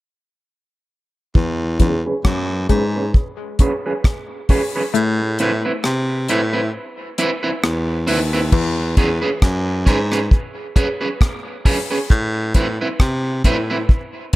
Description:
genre	dub reggae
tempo	67 BPM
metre	4/4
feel	swing 56% on 16ths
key	E major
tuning	A4 = 441 Hz
part	muted clav	riff	1.4-8.8 s	E3 to A3	-26 LUFS	left 6 dB	low-pass filter, dub echo
part	warm baritone saxophone	bass	1.4-13.9 s	D#2 to C3	-20 LUFS	equal	none
part	deep reggae drum kit	drums	1.4-14.4 s	crash cymbal, hi-hat, kick drum, rim click	-16 LUFS	equal	none
part	electric guitar at the edge of break-up	accompaniment	1.8-13.8 s	C4 to B4	-22 LUFS	right 2 dB	low-pass filter, dub echo
room	light reverb, studio reverb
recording	none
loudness	-16 LUFS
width	side -18 dB against mid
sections	1.4-8.5 A section; 8.5-14.4 B section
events	filter sweep 1.4-8.5; kick muted 4.9-8.5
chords	1.4 E6; 4.9 Amadd9; 8.5 E6; 12.1 Amadd9

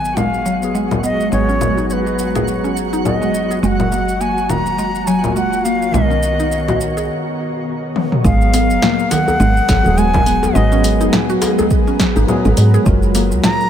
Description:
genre	organic downtempo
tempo	104 BPM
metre	4/4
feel	swing 58% on 16ths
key	G# dorian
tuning	A4 = 441 Hz
part	bright reedy bansuri	melody	0.0-13.7 s	B4 to A#5	-20 LUFS	equal	tape echo, shimmer reverb
part	tine electric piano	accompaniment	0.0-13.7 s	D#3 to A#4	-21 LUFS	left 3 dB	medium tremolo, sidechain pumping, low-pass filter, tape echo, shimmer reverb
part	granular cloud pad	sustained chords	0.4-13.7 s	F#3 to A#5	-25 LUFS	right 3 dB	built-in reverb, sidechain pumping, shimmer reverb
part	mallet-like synth pluck	arpeggios	0.0-13.7 s	D#3 to G#4	-22 LUFS	right 1 dB	lush chorus, tape echo, shimmer reverb
part	woody FM bass	bass	0.0-13.4 s	D#1 to G#2	-18 LUFS	equal	tube saturation
part	deep house drum kit	drums	0.0-13.7 s	congas, hi-hat, shaker, snare drum, toms	-20 LUFS	left 2 dB	overdrive
part	twinkling granular texture	texture	0.0-7.1 s	F#4	-29 LUFS	right 4 dB	built-in reverb, shimmer reverb
part	electronic kick drum	drums	8.2-13.0 s	none	-16 LUFS	equal	overdrive
part	djembe	percussion	8.5-13.3 s	none	-24 LUFS	left 2 dB	none
room	light reverb, digital ambience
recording	none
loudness	-13 LUFS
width	side -9 dB against mid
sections	0.0-8.2 A section; 8.2-13.7 B section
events	filter sweep on synth pluck 0.0-8.2; filter sweep on tine electric piano 0.0-8.2; filter sweep on ambient pad 0.0-8.2; break 7.1-8.2; drum fill 8.0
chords	0.0 G#m7; 3.6 F#maj7; 5.9 Bmaj7; 8.2 G#m7; 12.9 F#maj7

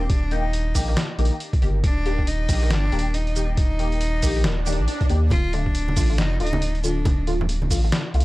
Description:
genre	deep dubstep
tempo	138 BPM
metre	4/4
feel	swing 60% on 16ths, half-time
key	unclear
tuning	A4 = 440 Hz
part	warm cello	melody	0.0-7.5 s	C4 to F4	-30 LUFS	equal	dub echo
part	filtered dub chord stab	stabs	0.0-8.2 s	D3 to G4	-30 LUFS	left 2 dB	phaser, ensemble chorus, dub echo
part	saturated sub bass	bass	0.0-8.2 s	D1 to Eb2	-22 LUFS	equal	none
part	electronic kick drum	drums	0.1-7.8 s	none	-21 LUFS	equal	none
part	trip hop sampler-style drum kit	drums	0.1-8.2 s	hi-hat, shaker, snare drum	-28 LUFS	equal	none
part	swell	sound effects	4.6-5.3 s	none	-31 LUFS	right 1 dB	none
part	congas	percussion	5.3-7.7 s	none	-28 LUFS	right 2 dB	none
room	little or no reverb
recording	dry, gritty hardware recording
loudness	-19 LUFS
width	side -19 dB against mid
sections	0.0-8.2 A section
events	swell 4.6-5.3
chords	0.0 Eb; 5.3 Dm

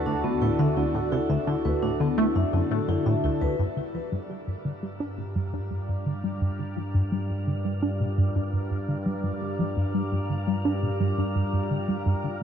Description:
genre	ambient, sequencer-driven space music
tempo	85 BPM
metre	4/4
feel	straight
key	G minor from 3.6 s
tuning	A4 = 440 Hz
part	sweeping resonant pad	sustained chords	0.0-12.4 s	D3 to D5	-32 LUFS	right 1 dB	chorus, phaser, shimmer reverb
part	vibraphone with medium mallets	arpeggios	0.0-3.6 s	B3 to E5	-31 LUFS	moving between left 8 dB and right 2 dB	auto-pan, ping-pong delay, shimmer reverb
part	analog drone	bass	0.0-12.4 s	D2 to G2	-32 LUFS	equal	chorus
part	tight sequenced synth	riff	0.1-12.3 s	D2 to D4	-26 LUFS	equal	chorus, ping-pong delay, shimmer reverb
part	wind-like tuned noise texture	texture	4.3-12.4 s	F4 to F5	-41 LUFS	left 1 dB	built-in reverb, shimmer reverb
room	moderate plate reverb, RT60 3.5 s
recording	dark, warm production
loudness	-24 LUFS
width	side -8 dB against mid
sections	0.0-3.6 A section; 3.6-12.4 B section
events	fade-in on analog synth pad 3.6-12.4; fade-in on synth texture 3.6-12.4; filter sweep on synth arpeggio sound 3.6-12.4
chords	0.0 D; 3.6 Gm

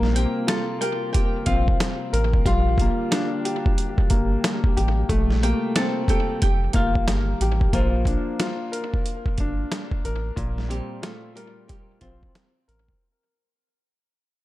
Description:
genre	hip hop, boom-bap hip-hop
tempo	91 BPM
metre	4/4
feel	swing 63% on 16ths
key	Bb major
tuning	A4 = 440 Hz
part	warm grand piano	accompaniment	0.0-13.0 s	Bb2 to Bb4	-27 LUFS	left 3 dB	cassette tape, high-pass filter, low-pass filter, tape echo
part	mellow tonewheel organ	sustained chords	0.0-7.7 s	C3 to A4	-34 LUFS	right 1 dB	chorus vibrato, slow rotary speaker, high-pass filter, low-pass filter
part	soft dub sub bass	bass	0.0-12.9 s	F1 to Bb1	-23 LUFS	equal	none
part	boom bap sampler-style drum kit	drums	0.0-13.0 s	hi-hat, kick drum, snare drum	-23 LUFS	equal	none
part	flamenco guitar	melody	0.2-12.3 s	F3 to A5	-29 LUFS	left 1 dB	high-pass filter, low-pass filter, tape echo
room	digital ambience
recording	echo-heavy mix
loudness	-20 LUFS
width	side -16 dB against mid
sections	0.0-7.7 A section; 7.7-13.0 B section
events	fade-out 7.7-13.0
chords	0.0 Gm11/Bb; 2.5 Bb6; 5.1 Gm11/Bb; 6.4 F9sus4; 7.7 Bb; 10.4 Gm11/Bb

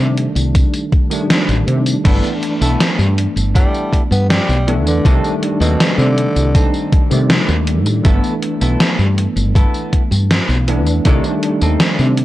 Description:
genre	vaporwave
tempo	80 BPM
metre	4/4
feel	straight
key	G major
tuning	A4 = 439 Hz
part	bell-like tine electric piano	accompaniment	0.0-12.2 s	Eb3 to D5	-19 LUFS	equal	medium stereo tremolo, ensemble chorus, tape echo
part	woody fretless electric bass	bass	0.0-12.2 s	G1 to C3	-15 LUFS	equal	ensemble chorus
part	gated 80s digital drum machine	drums	0.2-12.2 s	crash cymbal, hi-hat, snare drum, tambourine	-18 LUFS	equal	gated reverb, gated reverb snare
part	electronic kick drum	drums	0.5-11.2 s	none	-13 LUFS	equal	none
part	semi-hollow electric guitar	riff	2.0-12.2 s	B3 to A4	-26 LUFS	right 1 dB	wide subtle chorus, tape echo
part	growling tenor saxophone	melody	3.6-6.7 s	B2 to B3	-22 LUFS	equal	vintage 12-bit sampler grit, tape echo
room	digital ambience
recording	dry, gritty hardware recording, cassette tape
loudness	-12 LUFS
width	side -15 dB against mid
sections	0.0-2.1 A section; 2.1-12.2 B section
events	none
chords	0.0 Cm6; 2.1 G69; 5.1 Cm6; 8.1 G69; 11.1 Cm6

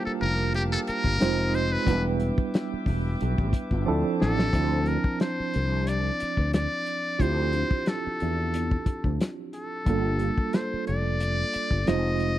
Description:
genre	R&B, neo-soul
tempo	90 BPM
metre	4/4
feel	swing 53% on 16ths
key	D minor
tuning	A4 = 440 Hz
part	trumpet with metal mute	melody	0.0-12.4 s	G4 to Eb5	-29 LUFS	left 1 dB	none
part	tine electric piano	accompaniment	0.0-12.4 s	E3 to A5	-29 LUFS	right 4 dB	medium stereo tremolo
part	tonewheel organ	sustained chords	0.0-4.5 s	G4 to D6	-37 LUFS	left 1 dB	slow rotary speaker
part	fretless electric bass	bass	0.1-12.4 s	E1 to E2	-27 LUFS	left 1 dB	ensemble chorus
part	warm soul drum kit	drums	0.2-12.4 s	hi-hat, kick drum, snare drum	-26 LUFS	left 1 dB	none
room	studio reverb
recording	dry, close 1970s-style studio recording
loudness	-23 LUFS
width	side -13 dB against mid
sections	0.0-4.5 A section; 4.5-12.4 B section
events	muted trumpet solo 0.0-4.5; drum fill 3.9-4.5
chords	0.0 Gm9; 1.2 Fm7; 1.9 Em7; 3.9 Dm9; 9.9 Gm9; 11.9 Fm7

